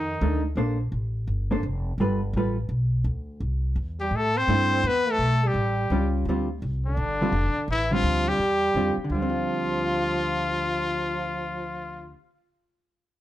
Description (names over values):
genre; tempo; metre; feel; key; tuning
jazz; 169 BPM; 4/4; swing 62% on 8ths; D minor; A4 = 440 Hz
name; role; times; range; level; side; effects
bright trumpet; melody; 0.0-0.5, 4.0-12.2 s; D4 to C5; -26 LUFS; left 2 dB; plate reverb
warm trombone; second line; 0.0-0.5, 4.0-12.1 s; D3 to C4; -29 LUFS; right 2 dB; none
upright bass; bass; 0.0-12.1 s; F1 to A2; -27 LUFS; equal; none
hollow-body jazz guitar; accompaniment; 0.2-12.4 s; D3 to C5; -28 LUFS; right 1 dB; none
room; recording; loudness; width
light reverb; none; -23 LUFS; side -13 dB against mid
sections
0.0-9.1 A section; 9.1-12.0 B section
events
none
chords
0.0 F6; 0.6 Bbmaj9; 2.0 G9; 3.4 C69; 4.8 E5; 5.6 A7b13; 6.3 Dm11; 9.1 Dm7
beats
0.21 | 0.57 0.93 1.28 1.64 | 1.99 2.35 2.71 3.06 | 3.42 3.77 4.13 4.48 | 4.84 5.20 5.55 5.91 | 6.26 6.62 6.97 7.33 | 7.69 8.04 8.40 8.75 | 9.11 9.47 9.82 10.18 | 10.54 10.89 11.25 11.61